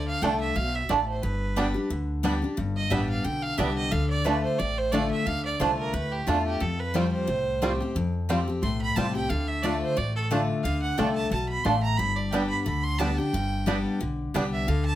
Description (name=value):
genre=bluegrass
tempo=178 BPM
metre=4/4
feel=swing 56% on 8ths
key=unclear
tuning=A4 = 439 Hz
part: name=clear fiddle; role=melody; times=0.0-15.0 s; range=F4 to C6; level=-30 LUFS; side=right 3 dB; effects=none
part: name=picked steel-string acoustic guitar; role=accompaniment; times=0.0-15.0 s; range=F2 to G4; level=-28 LUFS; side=left 3 dB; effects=none
part: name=upright bass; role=bass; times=0.0-15.0 s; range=G1 to F2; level=-30 LUFS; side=equal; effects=none
part: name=bluegrass banjo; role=arpeggios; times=0.2-14.4 s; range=G3 to F4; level=-29 LUFS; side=right 4 dB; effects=none
part: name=mandolin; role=stabs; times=0.2-14.4 s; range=A3 to A5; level=-32 LUFS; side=right 3 dB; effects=none
room=moderate studio reverb, RT60 0.6 s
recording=none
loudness=-24 LUFS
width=side -13 dB against mid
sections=0.0-15.0 A section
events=fiddle solo 0.0-15.0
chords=0.0 Dm; 1.2 G; 3.9 Dm; 6.6 Fadd9; 9.3 Dm; 12.0 G